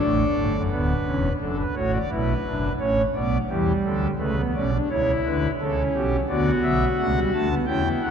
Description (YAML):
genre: classical, baroque-style 4-part fugue for pipe organ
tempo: 86 BPM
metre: 4/4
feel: straight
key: B minor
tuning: A4 = 440 Hz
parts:
  - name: pipe organ, foundations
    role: solo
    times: 0.0-8.1 s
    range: D1 to A5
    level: -21 LUFS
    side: equal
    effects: none
room: wet cathedral reverb, RT60 4.4 s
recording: dark, warm production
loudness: -21 LUFS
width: side -7 dB against mid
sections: 0.7-8.1 A section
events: none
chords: 0.0 Bm (rootless); 0.7 D; 2.1 Bm; 3.5 Em; 6.3 Bm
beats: 0.01 | 0.72 1.43 2.13 2.83 | 3.52 4.22 4.91 5.61 | 6.30 6.99 7.68